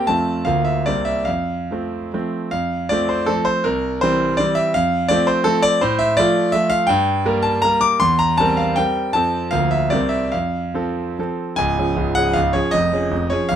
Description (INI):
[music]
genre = classical, romantic triple-time dance for piano with dotted rhythms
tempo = 131-175 BPM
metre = 3/4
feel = rubato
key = F major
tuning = A4 = 439 Hz
[part]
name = bright concert grand piano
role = solo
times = 0.0-13.6 s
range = Db1 to D6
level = -16 LUFS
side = equal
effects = none
[sound]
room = little or no reverb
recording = close, detailed microphones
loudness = -16 LUFS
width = side -9 dB against mid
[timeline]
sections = 0.0-2.5 A section; 2.5-11.6 B section; 11.6-13.6 C section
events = none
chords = 0.1 F; 0.5 Bb/D; 0.9 C7; 1.3 F; 3.7 C7; 4.8 F; 5.8 F/A; 6.9 Gm; 8.0 C7/E; 9.2 F; 9.5 Bb/D; 9.9 C7; 10.3 F; 11.6 Db; 12.7 Db/F